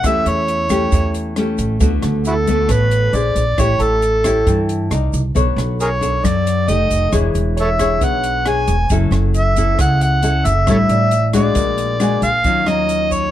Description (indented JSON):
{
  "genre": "bossa nova",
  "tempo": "135 BPM",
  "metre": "4/4",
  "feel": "straight",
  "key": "unclear",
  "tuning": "A4 = 439 Hz",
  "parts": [
    { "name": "overdriven harmonica", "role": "melody", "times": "0.0-13.3 s", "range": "E4 to G#5", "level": "-18 LUFS", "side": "right 1 dB", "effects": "none" },
    { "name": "nylon-string guitar", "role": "accompaniment", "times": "0.0-13.3 s", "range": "A2 to D5", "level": "-20 LUFS", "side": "left 4 dB", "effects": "none" },
    { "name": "warm grand piano", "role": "accompaniment", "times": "0.0-0.1, 3.8-13.3 s", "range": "C#5 to Bb5", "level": "-31 LUFS", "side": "right 4 dB", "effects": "none" },
    { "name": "upright bass", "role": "bass", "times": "0.0-13.3 s", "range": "E1 to G2", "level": "-18 LUFS", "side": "right 1 dB", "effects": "none" },
    { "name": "compact cocktail drum kit", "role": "drums", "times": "0.0-13.2 s", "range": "hi-hat, kick drum, rim click", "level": "-23 LUFS", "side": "right 1 dB", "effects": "none" },
    { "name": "egg shaker", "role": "percussion", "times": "0.0-13.3 s", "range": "none", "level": "-34 LUFS", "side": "right 8 dB", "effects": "none" }
  ],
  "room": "light reverb",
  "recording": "dark, warm production",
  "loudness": "-14 LUFS",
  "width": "side -12 dB against mid",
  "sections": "0.0-12.4 A section",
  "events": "none",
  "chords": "0.0 A7/E; 1.8 D6; 3.1 A#9; 3.6 A7; 4.9 Cm9; 5.4 Bm9; 6.7 F9; 7.1 E13; 8.9 F#m7; 10.7 A7sus4; 11.6 A#aug7; 12.4 Ebm9",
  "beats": "| 0.04 0.48 0.93 1.37 | 1.81 2.25 2.70 3.14 | 3.58 4.03 4.47 4.91 | 5.36 5.80 6.24 6.68 | 7.13 7.57 8.01 8.46 | 8.90 9.34 9.79 10.23 | 10.67 11.12 11.56 12.00 | 12.45 12.89"
}